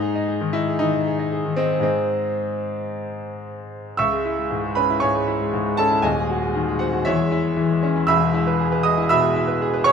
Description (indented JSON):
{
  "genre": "classical, virtuoso piano study",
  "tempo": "117 BPM",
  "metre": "4/4",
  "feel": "rubato",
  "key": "C# minor",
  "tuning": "A4 = 440 Hz",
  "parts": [
    { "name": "bright grand piano", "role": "solo", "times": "0.0-9.9 s", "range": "D#1 to E6", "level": "-19 LUFS", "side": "equal", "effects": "none" }
  ],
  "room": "light reverb",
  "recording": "dark, warm production",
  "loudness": "-19 LUFS",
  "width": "side -6 dB against mid",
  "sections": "0.0-4.0 A section; 4.0-9.9 B section",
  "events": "none",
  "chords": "0.0 G#; 4.0 C#m; 6.0 G#7/D#; 7.1 C#m/E; 8.1 E",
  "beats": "0.28 0.80 1.32 | 1.84 2.38 2.92 3.45 | 3.98 4.50 5.02 5.53 | 6.04 6.56 7.07 7.58 | 8.09 8.60 9.11 9.62"
}